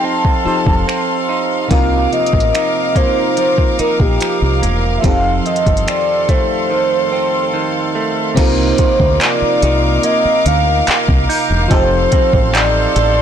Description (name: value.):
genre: contemporary R&B.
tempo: 72 BPM.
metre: 4/4.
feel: straight.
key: C dorian.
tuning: A4 = 444 Hz.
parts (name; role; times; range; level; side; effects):
mellow horn-like synth lead; melody; 0.0-13.2 s; G4 to A5; -17 LUFS; equal; chorus, ping-pong delay.
FM electric piano; accompaniment; 0.0-13.2 s; C3 to C5; -22 LUFS; left 2 dB; chorus, phaser.
rich studio string section; sustained chords; 0.0-13.2 s; A4 to D6; -20 LUFS; left 2 dB; none.
direct-recorded clean electric guitar; arpeggios; 0.0-13.2 s; F2 to A4; -21 LUFS; right 8 dB; ping-pong delay.
smooth R&B drum kit; drums; 0.2-13.2 s; crash cymbal, finger snaps, handclaps, hi-hat, kick drum; -16 LUFS; equal; none.
deep dub fingered electric bass; bass; 0.5-13.2 s; E1 to D2; -17 LUFS; equal; none.
synth chime; texture; 8.8-13.2 s; C6 to G6; -27 LUFS; left 1 dB; ensemble chorus, ping-pong delay.
room: light reverb.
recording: blown-out, overdriven recording, overdrive.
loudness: -12 LUFS.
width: side -9 dB against mid.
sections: 0.0-8.4 A section; 8.4-13.2 B section.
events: drums muted 6.7-8.4.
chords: 0.0 F7; 1.7 Cm11; 5.0 F7; 8.4 Cm11; 11.7 F7.